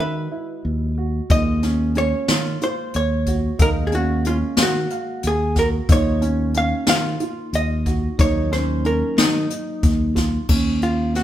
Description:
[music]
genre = progressive instrumental, band music in an uneven meter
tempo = 183 BPM (eighths)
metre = 7/8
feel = straight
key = Eb minor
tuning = A4 = 438 Hz
[part]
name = archtop guitar, miked and amplified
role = melody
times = 0.0-11.2 s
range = Eb4 to F5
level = -24 LUFS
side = equal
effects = none
[part]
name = tine electric piano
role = accompaniment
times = 0.0-10.5 s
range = Gb3 to F5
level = -30 LUFS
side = left 2 dB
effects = none
[part]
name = dark grand piano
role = arpeggios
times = 0.0-11.2 s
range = C4 to F5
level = -28 LUFS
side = right 4 dB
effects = none
[part]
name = fingered electric bass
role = bass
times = 0.0-11.2 s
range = D#2 to D#3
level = -21 LUFS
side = equal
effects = none
[part]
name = jazz brush drum kit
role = drums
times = 1.3-11.2 s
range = crash cymbal, hi-hat, kick drum, snare drum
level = -20 LUFS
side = left 1 dB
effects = none
[sound]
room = moderate stone room reverb, RT60 1.1 s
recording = band playing live in one room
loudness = -18 LUFS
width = side -12 dB against mid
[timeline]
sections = 0.0-10.5 A section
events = none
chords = 0.0 Emaj7/D#; 1.3 Gbmaj7/Eb; 5.9 Ebm; 10.5 Eb7(no3)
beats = 0.32 0.65 0.97 | 1.30 1.63 1.96 2.29 2.62 2.94 3.27 | 3.60 3.93 4.26 4.59 4.91 5.24 5.57 | 5.90 6.23 6.55 6.88 7.21 7.54 7.87 | 8.20 8.52 8.85 9.18 9.51 9.84 10.17 | 10.49 10.82 11.15

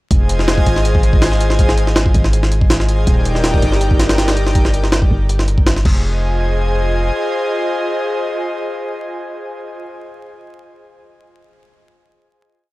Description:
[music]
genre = drum and bass, jungle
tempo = 162 BPM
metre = 4/4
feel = straight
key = F dorian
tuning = A4 = 440 Hz
[part]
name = airy breathy pad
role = sustained chords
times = 0.1-9.8 s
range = Eb4 to Ab5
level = -20 LUFS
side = equal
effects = chorus
[part]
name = long sustained 808-style bass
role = bass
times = 0.1-7.1 s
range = Eb1 to Ab1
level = -16 LUFS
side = equal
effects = none
[part]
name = jungle sampler-style drum kit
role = drums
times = 0.1-5.9 s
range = crash cymbal, hi-hat, kick drum, snare drum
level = -15 LUFS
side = equal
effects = none
[sound]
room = little or no reverb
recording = dry, gritty hardware recording, transformer saturation, vinyl crackle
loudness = -13 LUFS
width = side -19 dB against mid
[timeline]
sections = 0.1-6.0 drop; 6.0-9.0 final hit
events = drop 0.1-6.0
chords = 0.1 Fm7; 3.1 Ebmaj7; 5.8 Fm7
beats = | 0.11 0.48 0.85 1.22 | 1.59 1.96 2.33 2.70 | 3.07 3.44 3.81 4.18 | 4.55 4.92 5.29 5.66 | 6.04 6.41 6.78 7.15 | 7.52 7.89 8.26 8.63

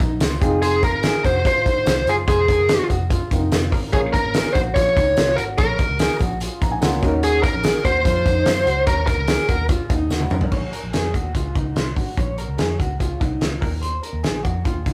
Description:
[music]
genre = jangly indie pop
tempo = 145 BPM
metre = 4/4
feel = straight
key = unclear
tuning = A4 = 440 Hz
[part]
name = dark upright piano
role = accompaniment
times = 0.0-10.5 s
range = Bb3 to Bb5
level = -30 LUFS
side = equal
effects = none
[part]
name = electric guitar through a small old amp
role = arpeggios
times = 0.0-14.9 s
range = Eb4 to Db5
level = -30 LUFS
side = equal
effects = tremolo, digital delay
[part]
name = vintage muted picked electric bass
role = bass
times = 0.0-14.9 s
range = F1 to Gb2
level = -28 LUFS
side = equal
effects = none
[part]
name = loose indie drum kit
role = drums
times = 0.0-14.9 s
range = crash cymbal, hi-hat, kick drum, snare drum, toms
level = -24 LUFS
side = equal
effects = none
[part]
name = tambourine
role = percussion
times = 0.0-10.4 s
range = none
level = -44 LUFS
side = equal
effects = none
[part]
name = smooth overdriven lead guitar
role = melody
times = 0.6-9.7 s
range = Ab4 to Db5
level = -21 LUFS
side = equal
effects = none
[sound]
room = wet studio reverb, RT60 0.6 s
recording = rough rehearsal-room recording, warm saturation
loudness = -20 LUFS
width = mono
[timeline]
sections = 0.0-10.5 A section; 10.5-14.9 B section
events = upright piano fill 6.4-7.2; drum fill 10.1-10.5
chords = 0.4 Fm7; 3.9 Bbm; 7.0 Ebm7; 10.5 Ebmadd9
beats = 0.20 | 0.62 1.03 1.45 1.86 | 2.27 2.69 3.10 3.52 | 3.93 4.34 4.75 5.17 | 5.58 5.99 6.40 6.81 | 7.23 7.64 8.05 8.46 | 8.87 9.28 9.69 10.11 | 10.52 10.93 11.34 11.76 | 12.17 12.59 13.00 13.41 | 13.83 14.24 14.66

